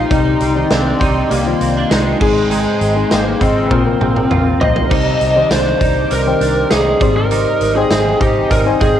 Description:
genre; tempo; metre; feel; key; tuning
1980s-style pop; 100 BPM; 4/4; straight; C minor; A4 = 440 Hz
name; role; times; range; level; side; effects
lead guitar through a small cranked amp; melody; 0.0-9.0 s; Ab3 to Eb5; -17 LUFS; left 1 dB; overdrive, cassette tape, plate reverb, analog delay
mellow FM electric piano; accompaniment; 0.0-9.0 s; Ab2 to Ab5; -19 LUFS; left 6 dB; chorus, plate reverb
phased analog pad; sustained chords; 0.0-9.0 s; G4 to Eb6; -25 LUFS; right 1 dB; phaser, chorus, plate reverb
direct-recorded clean electric guitar; riff; 0.0-9.0 s; F3 to G4; -20 LUFS; right 7 dB; ensemble chorus
vintage muted fingered electric bass; bass; 0.0-9.0 s; Ab1 to C2; -20 LUFS; equal; none
big rock drum kit; drums; 0.1-9.0 s; crash cymbal, hi-hat, kick drum, snare drum, tambourine, toms; -18 LUFS; equal; cassette tape
analog synth brass; stabs; 3.1-3.8 s; Ab3 to C5; -26 LUFS; left 6 dB; chorus, plate reverb, analog delay
room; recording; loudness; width
wet booth ambience, RT60 0.2 s; home recording on cassette; -12 LUFS; side -10 dB against mid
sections
0.0-4.9 A section; 4.9-9.0 A section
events
band accent 2.5-4.9; drum fill 3.7-4.9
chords
0.1 Cmadd9; 2.2 Ab; 3.7 Bbsus2; 4.9 Cmadd9; 7.0 Abmaj7

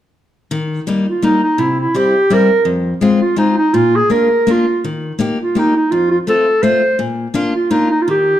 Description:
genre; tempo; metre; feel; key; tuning
alpine folk, alpine dance band; 167 BPM; 3/4; swing 53% on 8ths; Eb major; A4 = 440 Hz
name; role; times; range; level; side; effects
picked steel-string acoustic guitar; accompaniment; 0.5-8.3 s; F2 to G4; -17 LUFS; left 3 dB; none
warm clarinet; melody; 1.1-8.4 s; Eb4 to C5; -13 LUFS; right 1 dB; none
room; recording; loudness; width
moderate recital hall reverb, RT60 1.3 s; dark, warm production; -12 LUFS; side -12 dB against mid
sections
0.5-8.4 A section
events
none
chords
0.5 Eb; 1.6 C7; 2.7 Fm; 3.7 Bb; 4.8 Eb; 5.9 F; 7.0 Bb

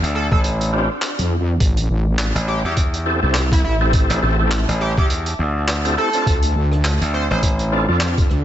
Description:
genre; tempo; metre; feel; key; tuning
glitch hop; 103 BPM; 4/4; swing 57% on 16ths; D minor; A4 = 436 Hz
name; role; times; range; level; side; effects
gritty slap bass; bass; 0.0-7.9 s; A1 to E2; -20 LUFS; equal; overdrive
vintage drum kit; drums; 0.0-8.4 s; handclaps, hi-hat, rim click; -25 LUFS; equal; none
granular cloud pad; texture; 0.6-8.4 s; D4 to A5; -34 LUFS; right 1 dB; none
sync lead; melody; 0.1-7.4 s; E4 to C5; -25 LUFS; right 1 dB; lush chorus, ping-pong delay
electronic kick drum; drums; 0.3-8.3 s; none; -18 LUFS; equal; none
overdriven tonewheel organ; stabs; 0.7-8.0 s; C4 to A4; -23 LUFS; equal; chorus vibrato, fast rotary speaker, sidechain pumping, ping-pong delay
wobble bass; bass; 1.2-8.4 s; A1 to F2; -18 LUFS; equal; chorus, overdrive
room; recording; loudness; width
light reverb, small room ambience; nothing above 8.0 kHz; -16 LUFS; side -11 dB against mid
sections
0.0-8.4 A section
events
none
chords
0.0 Dm7; 1.6 Am7; 6.3 Dm7

